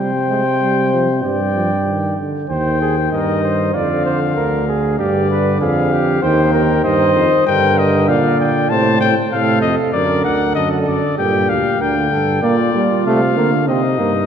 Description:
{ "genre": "classical, imitative canzona for brass ensemble", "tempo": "96 BPM", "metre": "4/4", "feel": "straight", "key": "unclear", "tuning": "A4 = 440 Hz", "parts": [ { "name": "warm trumpet", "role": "melody", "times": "0.0-14.3 s", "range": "D5 to A5", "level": "-20 LUFS", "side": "left 6 dB", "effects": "none" }, { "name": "mellow flugelhorn", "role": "second line", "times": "0.0-14.3 s", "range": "Eb4 to D5", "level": "-20 LUFS", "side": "right 1 dB", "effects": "none" }, { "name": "warm trombone", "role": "accompaniment", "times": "0.0-14.1 s", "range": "Bb2 to C4", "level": "-20 LUFS", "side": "right 2 dB", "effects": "none" }, { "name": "mellow bass trombone", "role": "bass", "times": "0.0-14.3 s", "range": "D2 to D3", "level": "-19 LUFS", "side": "right 1 dB", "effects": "none" } ], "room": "wet church reverb, RT60 2.8 s", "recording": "dark, warm production", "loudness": "-13 LUFS", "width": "side -8 dB against mid", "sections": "0.0-2.5 A section; 2.5-12.4 B section; 12.4-14.3 C section", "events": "none", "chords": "0.0 Gsus4/C; 1.2 G5; 2.5 Cm/Eb; 3.8 Ddim/F; 5.0 G; 6.2 Cm/Eb; 7.5 Gm; 8.7 Am; 9.9 D; 11.2 Gm; 12.4 Bb; 13.7 Cm" }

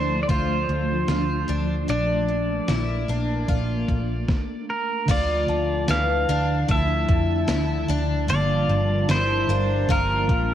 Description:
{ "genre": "dream pop", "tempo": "75 BPM", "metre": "4/4", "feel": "straight", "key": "D minor", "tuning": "A4 = 440 Hz", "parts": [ { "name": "pedal steel guitar", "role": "melody", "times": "0.0-10.5 s", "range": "Bb4 to F5", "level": "-26 LUFS", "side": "right 2 dB", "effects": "digital delay" }, { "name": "granular cloud pad", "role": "sustained chords", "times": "0.0-10.5 s", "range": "D3 to A5", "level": "-29 LUFS", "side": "equal", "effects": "built-in reverb" }, { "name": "picked twelve-string acoustic guitar", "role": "arpeggios", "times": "0.0-10.5 s", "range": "E3 to F4", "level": "-29 LUFS", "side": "left 6 dB", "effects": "wide subtle chorus, digital delay" }, { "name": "vintage muted picked electric bass", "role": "bass", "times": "0.0-10.5 s", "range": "G1 to F2", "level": "-25 LUFS", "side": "equal", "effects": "none" }, { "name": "detuned 8-bit digital drum machine", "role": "drums", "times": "0.3-10.5 s", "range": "crash cymbal, hi-hat, kick drum, snare drum, tambourine", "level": "-24 LUFS", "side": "equal", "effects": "none" }, { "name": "celesta", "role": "texture", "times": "0.3-10.5 s", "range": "F5 to C6", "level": "-40 LUFS", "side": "equal", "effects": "none" }, { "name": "semi-hollow electric guitar", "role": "accompaniment", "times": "5.1-10.5 s", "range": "G2 to E4", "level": "-29 LUFS", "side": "right 3 dB", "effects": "tremolo, wide subtle chorus" } ], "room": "moderate concert hall reverb, RT60 2.0 s", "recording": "worn, warbling old tape, cassette tape, warbly pitch drift", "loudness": "-20 LUFS", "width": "side -10 dB against mid", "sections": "0.0-5.1 A section; 5.1-10.5 B section", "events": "none", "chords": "0.0 Dm; 1.9 Bbmaj7; 5.1 Dmadd9; 8.3 Gm7" }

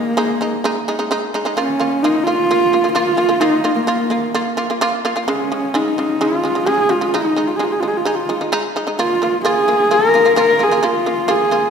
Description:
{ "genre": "mongolian traditional, Mongolian folk", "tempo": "130 BPM", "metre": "4/4", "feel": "straight", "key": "Bb yu mode", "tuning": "A4 = 440 Hz", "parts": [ { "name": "dark horsehead fiddle", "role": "melody", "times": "0.0-11.7 s", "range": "Bb3 to Bb4", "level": "-16 LUFS", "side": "equal", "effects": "none" }, { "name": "shamisen", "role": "arpeggios", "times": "0.0-11.7 s", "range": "Db3 to F4", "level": "-19 LUFS", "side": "right 1 dB", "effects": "none" } ], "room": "wet concert hall reverb, RT60 2.3 s", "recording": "minimal, uncompressed stereo recording", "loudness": "-14 LUFS", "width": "side -6 dB against mid", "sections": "0.0-1.6 A section; 1.6-11.7 A section", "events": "none", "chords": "0.0 Ab5; 1.6 Bb5; 5.3 Db5; 7.1 Ab5; 9.0 Bb5" }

